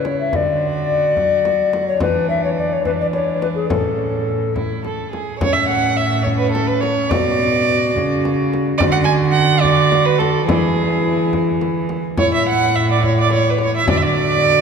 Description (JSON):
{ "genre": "classical, renaissance-style consort dance", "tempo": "71 BPM (dotted quarters)", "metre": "6/8", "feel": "straight", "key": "A major", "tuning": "A4 = 445 Hz", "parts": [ { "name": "hollow tenor recorder", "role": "melody", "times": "0.0-14.6 s", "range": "C#4 to E5", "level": "-20 LUFS", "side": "left 5 dB", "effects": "none" }, { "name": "warm violin", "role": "second line", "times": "0.0-14.6 s", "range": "C#4 to G#5", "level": "-19 LUFS", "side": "right 5 dB", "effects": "none" }, { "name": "dark cello", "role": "bass", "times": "0.0-14.6 s", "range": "A2 to F#3", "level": "-20 LUFS", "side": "right 2 dB", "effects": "none" }, { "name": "frame drum", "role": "percussion", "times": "0.1-14.1 s", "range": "none", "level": "-25 LUFS", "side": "left 2 dB", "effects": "none" } ], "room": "wet church reverb, RT60 3.6 s", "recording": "minimal, uncompressed stereo recording", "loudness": "-15 LUFS", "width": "side -6 dB against mid", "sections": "0.0-5.4 A section; 5.4-14.6 A section", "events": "none", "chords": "0.3 D; 2.0 Bmadd11/E; 3.7 A; 7.1 Bm; 8.8 D; 10.5 E; 12.2 A5; 13.9 D" }